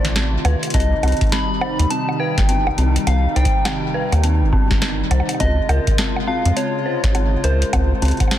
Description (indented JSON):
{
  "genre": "IDM",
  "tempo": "103 BPM",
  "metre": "4/4",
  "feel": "swing 62% on 16ths",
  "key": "unclear",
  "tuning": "A4 = 439 Hz",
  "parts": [
    { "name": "soft struck synth lead", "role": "melody", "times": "0.0-8.4 s", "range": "C5 to B5", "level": "-25 LUFS", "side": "left 2 dB", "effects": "chorus, ping-pong delay, shimmer reverb" },
    { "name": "hollow soft pad", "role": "sustained chords", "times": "0.0-8.4 s", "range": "C3 to F4", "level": "-25 LUFS", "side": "equal", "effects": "chorus, shimmer reverb" },
    { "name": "deep acid bass", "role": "bass", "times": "0.0-8.1 s", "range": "G1 to F2", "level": "-17 LUFS", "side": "equal", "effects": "tube saturation" },
    { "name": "booming analog drum machine", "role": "drums", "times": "0.0-8.4 s", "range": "bongos, hi-hat, snare drum", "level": "-24 LUFS", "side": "equal", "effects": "tape echo" },
    { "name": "dark detuned synth bell", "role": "arpeggios", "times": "0.2-8.4 s", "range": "C4 to C5", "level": "-25 LUFS", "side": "equal", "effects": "chorus, vintage 12-bit sampler grit, ping-pong delay, shimmer reverb" },
    { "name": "electronic kick drum", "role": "drums", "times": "0.7-8.3 s", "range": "none", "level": "-21 LUFS", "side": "equal", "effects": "none" }
  ],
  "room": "light reverb, digital ambience",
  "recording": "dense, heavily limited modern master",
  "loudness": "-16 LUFS",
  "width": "side -12 dB against mid",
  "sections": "0.0-8.4 A section",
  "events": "none",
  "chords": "0.0 Dm7; 0.7 Cm; 5.4 Dbmaj7",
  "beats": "0.16 | 0.74 1.32 1.91 2.49 | 3.07 3.65 4.24 4.82 | 5.40 5.98 6.57 7.15 | 7.73 8.31"
}